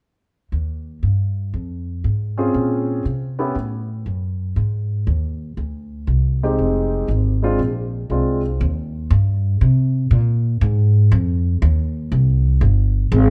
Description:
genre	jazz, big band swing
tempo	119 BPM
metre	4/4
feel	swing 66% on 8ths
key	Eb major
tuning	A4 = 441 Hz
part	upright bass	bass	0.5-13.3 s	F1 to C3	-20 LUFS	equal	none
part	clear upright piano	accompaniment	2.4-8.4 s	Ab3 to Ab4	-24 LUFS	equal	none
room	moderate large studio reverb, RT60 1.3 s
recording	dark, warm production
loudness	-19 LUFS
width	mono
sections	0.5-8.6 A section; 8.6-13.3 B section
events	none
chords	0.5 Ebadd9; 2.5 Bbm9; 3.6 Gbm; 4.6 Ab(#11); 6.6 Fm7; 7.6 Bb9; 8.6 Eb; 10.6 Ab; 12.6 N.C.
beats	| 0.53 1.03 1.54 2.04 | 2.55 3.06 3.56 4.07 | 4.57 5.08 5.58 6.08 | 6.59 7.09 7.60 8.10 | 8.60 9.11 9.61 10.11 | 10.62 11.12 11.62 12.12 | 12.63 13.13

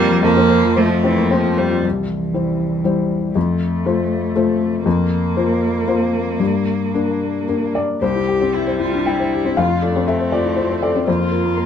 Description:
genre	neoclassical piano and strings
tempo	110-121 BPM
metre	3/4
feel	rubato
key	F major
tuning	A4 = 440 Hz
part	rich cello	second line	0.0-11.7 s	E3 to G4	-21 LUFS	right 4 dB	none
part	clear viola	accompaniment	0.0-1.8, 8.0-11.7 s	E3 to Bb3	-25 LUFS	right 3 dB	none
part	felt-muted upright piano	accompaniment	0.0-11.7 s	C2 to G5	-17 LUFS	left 4 dB	none
room	moderate studio reverb, RT60 0.6 s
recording	dark, warm production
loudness	-15 LUFS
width	side -8 dB against mid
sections	0.0-1.8 A section; 1.8-8.0 B section; 8.0-11.7 A section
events	none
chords	0.2 F; 1.8 C; 3.4 F; 4.9 Bbsus2/F; 6.4 Gm; 8.0 C; 9.6 F; 11.1 Bbsus2/F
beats	| 0.23 0.78 1.31 | 1.84 2.35 2.85 | 3.35 3.85 4.35 | 4.85 5.36 5.87 | 6.40 6.94 7.48 | 8.02 8.54 9.05 | 9.56 10.07 10.57 | 11.07 11.57

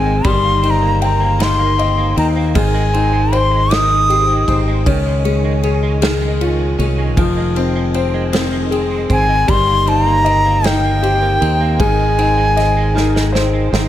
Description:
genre	six-eight pop ballad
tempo	52 BPM (dotted quarters)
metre	6/8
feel	straight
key	Ab major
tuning	A4 = 440 Hz
part	bright reedy bansuri	melody	0.0-4.6, 9.1-13.3 s	G5 to Eb6	-16 LUFS	equal	none
part	clear upright piano	accompaniment	0.0-13.9 s	F3 to G5	-19 LUFS	left 6 dB	none
part	direct-recorded clean electric guitar	arpeggios	0.0-13.9 s	Eb3 to Db4	-23 LUFS	right 6 dB	ensemble chorus
part	fingered electric bass	bass	0.0-13.9 s	F1 to Eb2	-17 LUFS	right 1 dB	none
part	unplugged drum kit	drums	0.2-13.9 s	kick drum, ride cymbal, snare drum	-22 LUFS	right 1 dB	none
room	light reverb, small room ambience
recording	none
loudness	-12 LUFS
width	side -12 dB against mid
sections	0.0-13.9 A section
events	drum fill 12.9-13.9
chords	0.2 Cm7/G; 2.6 Abmaj7; 4.9 Dbadd9; 7.2 Fm7; 9.5 Cm7/G; 11.8 Ab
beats	| 0.24 1.40 | 2.55 3.71 | 4.86 6.02 | 7.17 8.33 | 9.48 10.64 | 11.79 12.95

